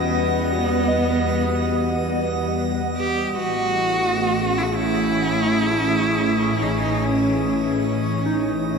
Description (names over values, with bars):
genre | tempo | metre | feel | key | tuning
ambient | 73 BPM | 4/4 | straight | A lydian | A4 = 440 Hz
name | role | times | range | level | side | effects
clear cello | melody | 0.0-8.8 s | B3 to G4 | -23 LUFS | equal | ping-pong delay
warbly tape-like pad | sustained chords | 0.0-8.8 s | E3 to F#5 | -22 LUFS | equal | chorus, built-in reverb, phaser
soft synth bell | arpeggios | 0.0-8.8 s | D#4 to D#5 | -30 LUFS | left 1 dB | chorus, phaser, ping-pong delay
dark chamber double bass section | bass | 0.0-8.8 s | A1 to E2 | -27 LUFS | equal | tube saturation
drifting glass-harmonics texture | texture | 0.0-8.8 s | D#5 to D#6 | -32 LUFS | right 4 dB | chorus, built-in reverb
room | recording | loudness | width
wet cathedral reverb, RT60 7.7 s | none | -18 LUFS | side -5 dB against mid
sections
0.0-8.8 A section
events
fade-out 7.7-8.8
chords
0.0 Emadd9; 3.3 Amaj7